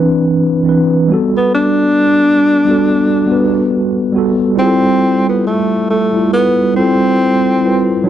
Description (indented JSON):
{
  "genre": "hip hop",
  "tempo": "69 BPM",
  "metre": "4/4",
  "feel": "swing 59% on 16ths",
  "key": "unclear",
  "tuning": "A4 = 440 Hz",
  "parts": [
    { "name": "mellow tine electric piano", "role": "accompaniment", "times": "0.0-8.1 s", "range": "E3 to B4", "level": "-13 LUFS", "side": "right 1 dB", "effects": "medium stereo tremolo, cassette tape" },
    { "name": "mellow tenor saxophone", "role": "melody", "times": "1.4-8.0 s", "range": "A3 to D4", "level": "-13 LUFS", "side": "left 1 dB", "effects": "none" }
  ],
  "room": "wet small room reverb, RT60 0.6 s",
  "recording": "dark, warm production",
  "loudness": "-10 LUFS",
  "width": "side -11 dB against mid",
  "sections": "0.0-8.1 A section",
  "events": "none",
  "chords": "0.0 Cmaj9; 1.1 Gmaj9; 4.6 Fmaj9"
}